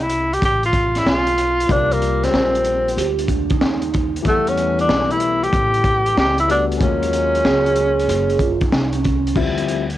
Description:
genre	hip hop, jazz-hop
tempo	94 BPM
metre	4/4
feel	swing 65% on 16ths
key	unclear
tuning	A4 = 440 Hz
part	breathy tenor saxophone	melody	0.0-8.7 s	A3 to G4	-18 LUFS	equal	cassette tape, plate reverb
part	upright bass	bass	0.0-10.0 s	Gb1 to E2	-24 LUFS	equal	tube saturation
part	crunchy breakbeat drum kit	drums	0.0-10.0 s	crash cymbal, hi-hat, kick drum, snare drum	-22 LUFS	equal	cassette tape
part	dark baby grand piano	accompaniment	1.7-9.8 s	E3 to F#5	-25 LUFS	left 9 dB	cassette tape, plate reverb
part	vibraphone with soft mallets	second line	3.0-9.3 s	Db4 to Ab4	-21 LUFS	right 7 dB	cassette tape, plate reverb
room	moderate booth ambience, RT60 0.2 s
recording	home recording on cassette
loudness	-15 LUFS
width	side -13 dB against mid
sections	0.0-9.4 A section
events	break 0.0-1.7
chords	0.0 Dm7 (rootless); 1.7 Cm11; 4.3 Em11; 6.8 Ebm11; 9.4 Dm11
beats	0.42 1.06 | 1.70 2.34 2.98 3.62 | 4.25 4.89 5.53 6.17 | 6.81 7.45 8.08 8.72 | 9.36

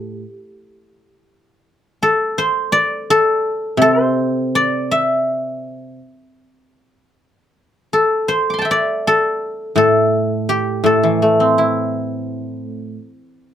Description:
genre	chinese traditional, Chinese solo plucked strings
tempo	76-88 BPM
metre	4/4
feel	rubato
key	A yu mode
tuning	A4 = 440 Hz
part	guzheng	solo	0.0-13.1 s	A2 to D6	-15 LUFS	equal	none
room	light reverb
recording	none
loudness	-14 LUFS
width	side -10 dB against mid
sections	0.0-13.5 A section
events	none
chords	none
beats	0.22 0.94 | 1.66 2.36 3.06 3.78 | 4.50 5.23 5.98 6.76 | 7.54 8.30 9.05 9.77 | 10.48 11.20 11.91 12.60

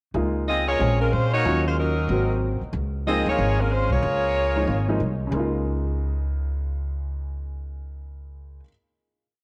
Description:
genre	jazz, big band swing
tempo	186 BPM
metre	4/4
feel	swing 62% on 8ths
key	Db major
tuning	A4 = 440 Hz
part	warm upright piano	accompaniment	0.1-8.7 s	Db3 to Ab4	-30 LUFS	equal	none
part	upright bass	bass	0.1-8.6 s	Ab1 to Bb2	-28 LUFS	equal	none
part	warm saxophone section	melody	0.5-5.0 s	Gb3 to Eb5	-26 LUFS	equal	none
room	moderate plate reverb, RT60 2.6 s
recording	none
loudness	-24 LUFS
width	mono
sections	0.1-5.3 A section; 5.3-7.9 final chord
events	none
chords	0.1 Db6; 0.8 Bbm7; 1.4 Ebm7; 2.1 Ab7; 2.7 Db6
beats	| 0.14 0.47 0.79 1.12 | 1.44 1.77 2.09 2.42 | 2.74 3.06 3.39 3.71 | 4.03 4.35 4.68 5.00 | 5.32 5.64 5.96 6.29 | 6.61 6.93 7.25 7.57

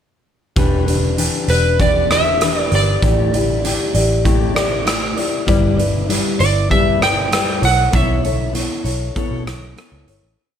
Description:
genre	indie pop, bedroom pop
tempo	98 BPM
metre	4/4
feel	straight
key	E dorian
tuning	A4 = 440 Hz
part	fingerpicked steel-string acoustic guitar	accompaniment	0.6-10.4 s	E3 to D5	-20 LUFS	left 4 dB	lush chorus, warbly pitch drift
part	vintage muted picked electric bass	bass	0.6-10.4 s	E1 to B2	-20 LUFS	equal	none
part	raw garage drum kit	drums	0.6-10.2 s	hi-hat, kick drum, rim click	-19 LUFS	right 1 dB	none
part	electric slide guitar	melody	1.5-8.5 s	B4 to G5	-18 LUFS	right 1 dB	wide subtle chorus, slapback echo
room	light reverb, small room ambience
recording	none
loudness	-14 LUFS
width	side -8 dB against mid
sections	0.6-10.4 verse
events	fade-out 7.9-10.4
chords	0.6 Em7; 3.0 A7sus4; 5.5 G6; 7.6 B9sus4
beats	| 0.56 1.18 1.79 2.41 | 3.02 3.64 4.25 4.87 | 5.48 6.10 6.71 7.32 | 7.94 8.55 9.16 9.77

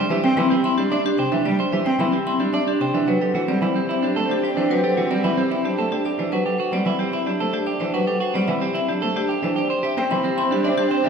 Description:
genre	classical, minimalist pattern music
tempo	111 BPM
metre	3/4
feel	straight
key	A dorian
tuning	A4 = 442 Hz
part	marimba with hard mallets	melody	0.0-11.1 s	G4 to C6	-25 LUFS	left 6 dB	none
part	electric guitar at the edge of break-up	arpeggios	0.0-11.1 s	C4 to D5	-22 LUFS	right 4 dB	none
part	clear cello	accompaniment	0.1-11.1 s	C3 to D4	-25 LUFS	right 1 dB	none
part	warm French horn	second line	3.1-6.1, 9.6-11.1 s	C5	-28 LUFS	equal	none
part	rich studio string section	sustained chords	3.1-6.1, 9.6-11.1 s	C4 to G4	-30 LUFS	left 1 dB	none
room	wet scoring stage reverb, RT60 1.8 s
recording	heard from further back in the room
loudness	-19 LUFS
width	side -6 dB against mid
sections	0.0-11.1 A section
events	none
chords	0.0 Csus2; 3.1 Am11; 9.6 Csus2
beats	0.37 0.92 | 1.46 2.00 2.54 | 3.08 3.62 4.16 | 4.70 5.24 5.78 | 6.32 6.86 7.40 | 7.94 8.48 9.02 | 9.56 10.10 10.64

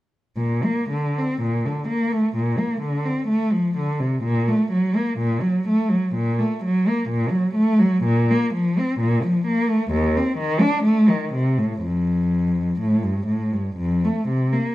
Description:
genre	classical, baroque-style suite movement for unaccompanied cello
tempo	63 BPM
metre	4/4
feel	uneven beats, rubato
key	Bb major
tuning	A4 = 440 Hz
part	warm cello	solo	0.4-14.7 s	Eb2 to D4	-19 LUFS	equal	none
room	moderate stone room reverb, RT60 1.0 s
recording	dark, warm production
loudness	-19 LUFS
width	side -16 dB against mid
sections	0.4-14.7 A section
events	none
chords	none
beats	| 0.37 1.39 2.34 3.29 | 4.23 5.18 6.14 7.07 | 8.03 8.98 9.90 10.84 | 11.82 12.79 13.78

